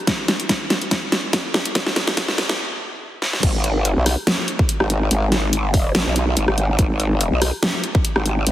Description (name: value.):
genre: heavy wobble dubstep.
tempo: 143 BPM.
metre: 4/4.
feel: swing 54% on 16ths, half-time.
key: G# minor.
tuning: A4 = 439 Hz.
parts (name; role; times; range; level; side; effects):
dubstep drum kit; drums; 0.1-8.5 s; crash cymbal, hi-hat, rim click, snare drum; -20 LUFS; equal; none.
electronic kick drum; drums; 0.1-8.0 s; none; -20 LUFS; equal; none.
growl bass; bass; 3.4-8.5 s; G#1 to B1; -18 LUFS; equal; chorus, overdrive.
room: moderate lush hall reverb, RT60 2.1 s.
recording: heavily compressed radio sound, high-pass filter.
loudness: -17 LUFS.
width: side -13 dB against mid.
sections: 0.0-3.4 A section; 3.4-8.5 B section.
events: build-up 0.0-3.4; drum fill 0.0-2.6, 3.2; filter sweep 0.0-3.4; stop 2.6-3.4; drop 3.4-8.5.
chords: none.